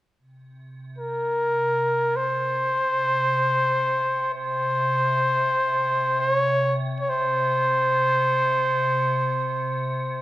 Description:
caucasian folk, Caucasian lament; free time; A4 = 441 Hz
icy glass pad; drone; 0.5-10.2 s; C3; -30 LUFS; equal; chorus, built-in reverb
mellow trumpet; melody; 1.0-10.2 s; Bb4 to Db5; -21 LUFS; equal
moderate recital hall reverb, RT60 1.6 s; -20 LUFS; side -15 dB against mid
0.2-10.2 A section

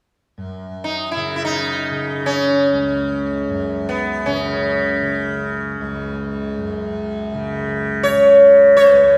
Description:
indian classical; free time; A4 = 444 Hz
tanpura; drone; 0.4-9.2 s; C#2 to C#3; -25 LUFS; equal
sitar; melody; 0.8-9.2 s; B3 to C#5; -16 LUFS; equal
wet concert hall reverb, RT60 1.9 s; recorded in a church or concert hall; -17 LUFS; mono
0.4-9.2 A section

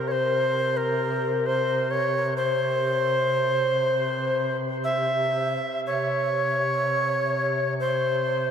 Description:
caucasian folk, Caucasian lament; free time; A4 = 440 Hz
breathy bass recorder; melody; 0.0-8.5 s; Bb4 to E5; -23 LUFS; equal; analog delay
mellow duduk; drone; 0.0-8.5 s; C3; -30 LUFS; equal
wet huge ambient reverb, RT60 8.3 s; dreamy mix soaked in reverb; -22 LUFS; side -7 dB against mid
0.0-5.8 A section; 5.8-8.5 B section

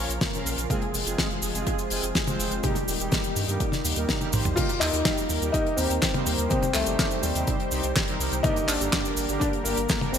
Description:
italo disco; 124 BPM; 4/4; straight; A4 = 440 Hz
warm analog pad; sustained chords; 0.0-10.2 s; Bb2 to C5; -32 LUFS; equal; chorus
analog synth brass; stabs; 0.0-10.2 s; G2 to F5; -32 LUFS; right 3 dB; chorus, ping-pong delay
round analog bass; bass; 0.0-10.2 s; Eb1 to G2; -31 LUFS; equal
damped 70s drum kit; drums; 0.1-10.2 s; cabasa, crash cymbal, handclaps, hi-hat, snare drum, toms; -27 LUFS; left 1 dB
electronic kick drum; drums; 0.2-10.0 s; -30 LUFS; equal
dark grand piano; melody; 4.6-10.2 s; G3 to F4; -28 LUFS; left 2 dB; ping-pong delay
moderate lush hall reverb, RT60 1.9 s, studio reverb; bright 1980s-style digital production; -23 LUFS; side -8 dB against mid
0.0-4.6 A section; 4.6-10.2 B section
drum fill 4.1-4.6
0.0 Bbm; 0.7 Fm; 2.6 Eb; 6.5 Cm; 8.4 Gm

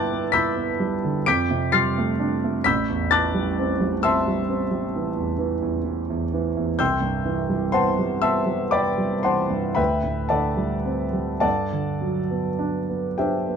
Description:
classical, impressionist solo piano; 34-45 BPM (dotted quarters); 9/8; rubato; G major; A4 = 440 Hz
warm concert grand piano; solo; 0.0-13.6 s; A1 to D7; -20 LUFS; equal
light reverb; dark, warm production; -20 LUFS; side -7 dB against mid
0.0-13.6 A section
0.0 G6; 1.2 F69; 2.7 Am9; 6.8 Cmaj7; 9.8 D9sus4; 11.4 Gmaj7

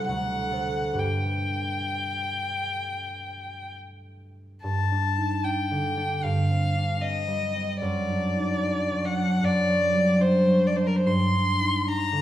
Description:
classical, romantic duo for violin and harp; 63-80 BPM; 4/4; rubato; G major; A4 = 438 Hz
rich violin; melody; 0.0-12.2 s; Bb4 to C6; -26 LUFS; left 1 dB
concert harp; accompaniment; 0.0-12.2 s; C2 to C5; -26 LUFS; right 1 dB
wet recital hall reverb, RT60 1.4 s; recorded in a church or concert hall; -23 LUFS; side -12 dB against mid
0.0-4.6 A section; 4.6-12.2 B section
0.1 D7; 1.0 G; 4.6 G5; 6.2 Ebmaj13/G; 7.8 D7/F#; 11.1 Gm

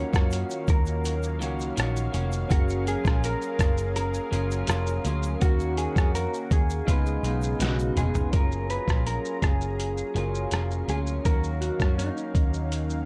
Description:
indie pop, bedroom pop; 82 BPM; 4/4; straight; F# major; A4 = 440 Hz
mellow electric guitar; melody; 0.0-13.1 s; D#4 to C#5; -35 LUFS; equal; analog chorus, tape echo
electric guitar through a small old amp; accompaniment; 0.0-13.1 s; C#3 to F#4; -37 LUFS; equal; analog chorus, warbly pitch drift
soft electric-piano-like synth keys; accompaniment; 0.0-13.1 s; F#3 to A#5; -38 LUFS; equal; chorus, cassette tape
lush unison pad; sustained chords; 0.0-13.1 s; C#3 to A#5; -40 LUFS; equal; chorus
vintage muted picked electric bass; bass; 0.0-13.1 s; E#1 to F#2; -31 LUFS; equal
boom bap sampler-style drum kit; drums; 0.1-13.1 s; hi-hat, kick drum, rim click, shaker, snare drum, toms; -27 LUFS; equal
tube shaker; percussion; 0.1-8.3 s; -56 LUFS; equal
light reverb; dark, warm production; -26 LUFS; mono
0.0-8.3 A section; 8.3-13.1 B section
drum fill 7.6-8.3
0.0 D#m7; 2.5 F#maj7; 5.4 D#m7; 6.9 C#9; 8.3 F#maj7; 11.3 D#m7

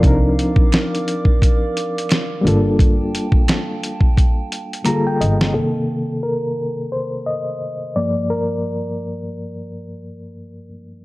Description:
lo-fi hip hop; 87 BPM; 4/4; swing 59% on 16ths; C dorian; A4 = 440 Hz
bright reed electric piano; accompaniment; 0.0-11.0 s; G2 to Bb5; -21 LUFS; left 1 dB; fast tremolo, cassette tape, low-pass filter
warbly tape-like pad; sustained chords; 0.0-5.5 s; Bb4 to D6; -29 LUFS; right 2 dB; chorus, built-in reverb
clear double bass; bass; 0.0-5.5 s; G1 to C2; -19 LUFS; equal
dusty soul sampler-style drum kit; drums; 0.0-5.5 s; hi-hat, kick drum, snare drum; -16 LUFS; equal
finger snaps; percussion; 0.7-5.0 s; -33 LUFS; right 8 dB
light reverb; cassette tape; -16 LUFS; side -20 dB against mid
0.0-5.5 A section; 5.5-11.0 B section
drum fill 4.2-5.5; reed electric piano solo 5.5-11.0; filter sweep on reed electric piano 5.5-11.0
0.0 Cm11; 2.4 Gm9; 5.5 Cm7; 8.0 Gm7

